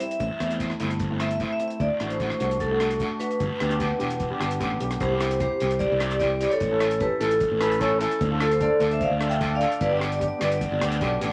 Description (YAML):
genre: calypso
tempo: 150 BPM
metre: 4/4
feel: straight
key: C major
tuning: A4 = 441 Hz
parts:
  - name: vibraphone with medium hard mallets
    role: melody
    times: 0.0-11.2 s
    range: F4 to G5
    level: -27 LUFS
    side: equal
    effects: none
  - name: steel pan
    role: accompaniment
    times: 0.0-11.3 s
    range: G3 to A4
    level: -32 LUFS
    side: equal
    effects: none
  - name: deep reggae drum kit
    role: drums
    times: 0.0-11.3 s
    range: hi-hat, kick drum, rim click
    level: -37 LUFS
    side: equal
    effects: none
  - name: fingered electric bass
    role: bass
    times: 0.2-11.3 s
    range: E1 to E2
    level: -31 LUFS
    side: equal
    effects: none
  - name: guiro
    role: percussion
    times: 0.2-11.3 s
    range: none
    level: -37 LUFS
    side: equal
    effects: none
  - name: breathy alto saxophone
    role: second line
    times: 7.6-8.3 s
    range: A4 to C#5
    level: -29 LUFS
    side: equal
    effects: none
room: moderate studio reverb, RT60 0.8 s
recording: vinyl crackle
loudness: -25 LUFS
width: mono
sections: 0.0-5.0 A section; 5.0-11.3 B section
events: none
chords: 0.2 Am; 1.8 D7; 3.4 G; 5.0 Cadd9; 6.6 A; 8.2 Dm; 9.8 G